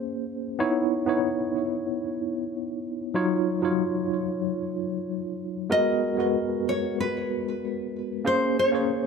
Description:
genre	chillout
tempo	94 BPM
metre	4/4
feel	straight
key	G# minor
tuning	A4 = 440 Hz
part	tine electric piano	accompaniment	0.0-9.1 s	F#3 to C#5	-25 LUFS	equal	medium stereo tremolo, auto-pan, digital delay
part	nylon-string guitar	melody	5.7-9.1 s	B4 to D#5	-26 LUFS	equal	digital delay
room	moderate plate reverb, RT60 2.7 s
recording	none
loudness	-24 LUFS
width	side -5 dB against mid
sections	0.0-9.1 A section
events	none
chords	0.0 A#m9; 0.6 C#m9; 3.2 D#m9; 5.7 G#m9; 8.3 A#m9

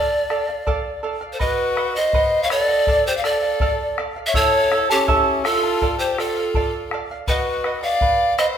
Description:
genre	andean folk, Andean ensemble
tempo	82 BPM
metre	2/4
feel	straight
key	unclear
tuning	A4 = 439 Hz
part	breathy hollow pan flute	melody	0.0-8.5 s	G4 to F5	-20 LUFS	equal	none
part	charango	accompaniment	0.0-8.6 s	E4 to A5	-24 LUFS	right 3 dB	none
part	bombo	percussion	0.3-8.6 s	none	-26 LUFS	left 2 dB	none
part	warm violin	second line	1.3-8.6 s	C#4 to D5	-26 LUFS	left 5 dB	none
room	wet recital hall reverb, RT60 1.4 s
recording	minimal, uncompressed stereo recording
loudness	-17 LUFS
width	side -8 dB against mid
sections	0.0-1.4 A section; 1.4-8.6 A section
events	none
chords	0.0 Dm; 1.4 B; 2.9 Dm; 4.3 A; 5.8 Dm; 7.3 B

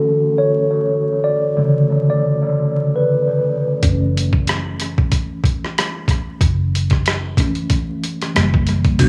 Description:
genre	R&B, neo-soul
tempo	93 BPM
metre	4/4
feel	swing 55% on 16ths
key	B minor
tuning	A4 = 440 Hz
part	mellow tine electric piano	accompaniment	0.0-9.1 s	C#3 to D5	-20 LUFS	equal	analog delay
part	vintage muted fingered electric bass	bass	3.8-9.1 s	F#1 to B1	-22 LUFS	equal	none
part	boom bap sampler-style drum kit	drums	3.8-9.1 s	crash cymbal, hi-hat, kick drum, rim click	-20 LUFS	equal	analog delay
room	moderate plate reverb, RT60 1.6 s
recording	echo-heavy mix, vinyl crackle, small room ambience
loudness	-18 LUFS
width	mono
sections	0.0-9.0 A section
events	tine electric piano solo 0.0-9.0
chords	0.0 Bm11; 3.8 F#m7; 8.3 F#7b9

